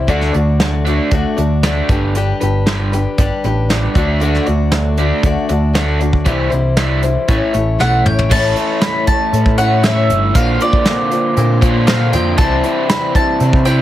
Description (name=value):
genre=folk rock and heartland rock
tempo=117 BPM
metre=4/4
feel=straight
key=unclear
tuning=A4 = 439 Hz
part: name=picked old ladder-braced acoustic guitar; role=accompaniment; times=0.0-13.8 s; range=A2 to D5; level=-20 LUFS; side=left 5 dB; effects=none
part: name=crunchy overdriven guitar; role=riff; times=0.0-13.8 s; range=G2 to F4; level=-19 LUFS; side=right 2 dB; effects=spring reverb
part: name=picked electric bass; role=bass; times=0.0-13.8 s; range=G1 to C3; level=-16 LUFS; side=equal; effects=none
part: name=soft brush drum kit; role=drums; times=0.1-13.8 s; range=crash cymbal, hi-hat, kick drum, snare drum, toms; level=-17 LUFS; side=equal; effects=none
part: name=mandolin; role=melody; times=7.8-13.8 s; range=D5 to B5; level=-18 LUFS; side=right 1 dB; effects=none
room=light reverb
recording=heavily compressed radio sound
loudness=-12 LUFS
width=side -13 dB against mid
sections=0.0-8.3 A section; 8.3-13.8 B section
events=drum fill 7.8-8.3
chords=0.1 D; 1.9 G; 4.0 D; 6.3 C; 7.3 A; 10.4 Bbadd9; 12.4 C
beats=| 0.09 0.60 1.12 1.64 | 2.15 2.67 3.18 3.70 | 4.21 4.73 5.24 5.76 | 6.27 6.78 7.29 7.81 | 8.32 8.83 9.34 9.85 | 10.36 10.87 11.38 11.89 | 12.39 12.90 13.41